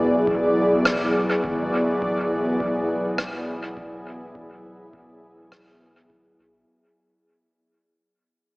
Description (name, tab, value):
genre	ambient dub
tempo	103 BPM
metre	4/4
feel	swing 55% on 16ths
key	E mixolydian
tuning	A4 = 440 Hz
part	airy breathy pad	sustained chords	0.0-6.7 s	F#3 to G#4	-23 LUFS	equal	chorus
part	soft dub sub bass	bass	0.0-6.7 s	D1 to B1	-42 LUFS	equal	none
part	bubbling stepped-filter texture	texture	0.0-6.7 s	D5	-27 LUFS	equal	chorus, built-in reverb
part	electronic kick drum	drums	0.3-6.2 s	none	-39 LUFS	equal	none
part	rim click	drums	0.9-5.6 s	none	-28 LUFS	equal	dub echo
room	wet lush hall reverb, RT60 2.4 s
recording	dreamy mix soaked in reverb, AM radio sound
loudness	-20 LUFS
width	side -25 dB against mid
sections	0.0-6.7 A section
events	fade-out 0.0-6.7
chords	0.0 E7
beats	0.27 0.86 1.44 | 2.02 2.60 3.19 3.77 | 4.35 4.93 5.52 6.10